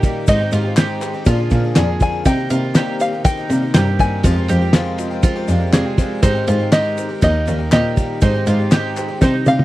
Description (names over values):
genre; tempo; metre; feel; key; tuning
indie folk with a building arrangement; 121 BPM; 4/4; straight; unclear; A4 = 440 Hz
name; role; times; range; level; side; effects
open-back banjo; melody; 0.0-9.6 s; C5 to Ab5; -21 LUFS; left 1 dB; none
dark upright piano; accompaniment; 0.0-9.6 s; F1 to G5; -26 LUFS; right 3 dB; none
picked twelve-string acoustic guitar; accompaniment; 0.0-9.6 s; Bb2 to Ab4; -26 LUFS; left 6 dB; none
mellow brass ensemble; sustained chords; 0.0-9.6 s; D3 to Bb4; -31 LUFS; left 1 dB; none
bowl-back mandolin; arpeggios; 0.0-9.6 s; Eb4 to Ab4; -26 LUFS; right 5 dB; none
rich cello; bass; 0.0-9.6 s; Eb2 to C3; -19 LUFS; equal; none
cloth-damped thuddy drum kit; drums; 0.0-9.6 s; kick drum, ride cymbal, snare drum, toms; -16 LUFS; equal; none
tube shaker; percussion; 0.0-9.6 s; none; -37 LUFS; left 16 dB; none
group handclap; percussion; 0.8-9.1 s; none; -29 LUFS; left 6 dB; none
room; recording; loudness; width
little or no reverb; dry, close 1970s-style studio recording; -14 LUFS; side -16 dB against mid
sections
0.0-9.6 A section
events
upright piano fill 5.2-6.2; drum fill 9.2-9.6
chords
0.3 Abmaj7; 1.3 Bb7; 2.3 Cm7; 4.2 Fmadd9; 6.2 Abmaj7; 7.2 Eb; 8.2 Abmaj7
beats
| 0.28 0.77 1.27 1.76 | 2.26 2.75 3.25 3.75 | 4.24 4.74 5.24 5.73 | 6.23 6.73 7.23 7.72 | 8.22 8.72 9.22